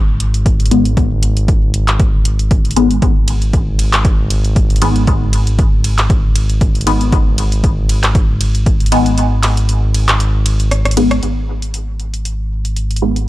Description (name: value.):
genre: dub techno.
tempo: 117 BPM.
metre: 4/4.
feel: swing 55% on 16ths.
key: G# minor.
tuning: A4 = 440 Hz.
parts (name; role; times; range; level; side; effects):
filtered dub chord stab; stabs; 0.0-13.3 s; D#3 to B3; -16 LUFS; left 2 dB; phaser, sidechain pumping, dub echo.
round analog bass; bass; 0.0-13.3 s; G#1; -15 LUFS; equal; tube saturation, sidechain pumping.
deep house drum kit; drums; 0.2-13.3 s; handclaps, hi-hat, ride cymbal, rim click; -20 LUFS; equal; overdrive.
electronic kick drum; drums; 0.5-8.8 s; none; -14 LUFS; equal; overdrive.
room: little or no reverb.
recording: dry, gritty hardware recording, transformer saturation, cassette tape.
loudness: -11 LUFS.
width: side -16 dB against mid.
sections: 0.0-11.2 A section; 11.2-13.3 B section.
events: kick drops out 9.2-11.2; drum fill 10.7-11.2.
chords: 0.0 G#m.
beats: 0.46 | 0.97 1.48 2.00 2.51 | 3.02 3.53 4.05 4.56 | 5.07 5.59 6.10 6.61 | 7.12 7.64 8.15 8.66 | 9.18 9.69 10.20 10.71 | 11.23 11.74 12.25 12.77 | 13.28.